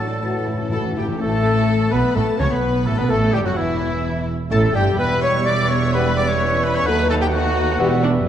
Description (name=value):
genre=quick classical-period movement for symphony orchestra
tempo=128 BPM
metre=4/4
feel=rubato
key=unclear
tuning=A4 = 440 Hz
part: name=dark chamber violin section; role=melody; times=0.0-8.0 s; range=E5 to D6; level=-29 LUFS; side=left 4 dB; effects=none
part: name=dark clarinet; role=second line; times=0.0-8.3 s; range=E4 to D5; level=-30 LUFS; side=left 4 dB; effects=none
part: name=small flute group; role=second line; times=0.0-8.0 s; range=E4 to D5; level=-30 LUFS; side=left 2 dB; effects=none
part: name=warm chamber violin section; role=second line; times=0.0-8.0 s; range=C#4 to D5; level=-28 LUFS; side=left 3 dB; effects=none
part: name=warm oboe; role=second line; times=0.0-8.3 s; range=E4 to F#5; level=-31 LUFS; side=right 1 dB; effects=none
part: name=dark chamber viola section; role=accompaniment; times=0.0-8.3 s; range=D3 to D#4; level=-27 LUFS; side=equal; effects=none
part: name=warm bassoon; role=accompaniment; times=0.0-8.3 s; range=E3 to C#4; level=-28 LUFS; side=equal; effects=none
part: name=mellow French horn section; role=sustained chords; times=0.0-8.0 s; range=E3 to A4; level=-26 LUFS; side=left 4 dB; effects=none
part: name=warm trumpet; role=stabs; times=0.0-8.0 s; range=E4 to D5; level=-26 LUFS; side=right 1 dB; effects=none
part: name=dark chamber cello section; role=bass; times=0.0-8.3 s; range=D#2 to C#3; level=-23 LUFS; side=right 2 dB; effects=none
part: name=warm studio double bass section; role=bass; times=0.0-8.3 s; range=E1 to D#2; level=-24 LUFS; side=right 3 dB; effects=none
part: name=timpani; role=percussion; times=0.2-1.2 s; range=A2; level=-29 LUFS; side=left 1 dB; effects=none
room=wet concert hall reverb, RT60 1.8 s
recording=dark, warm production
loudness=-16 LUFS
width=side -10 dB against mid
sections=0.0-1.2 A section; 1.2-8.3 B section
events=timpani fill 0.2-1.2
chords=0.2 A; 1.2 Aadd9; 3.1 A5; 4.0 Gsus2; 5.0 Em; 6.9 B7/D#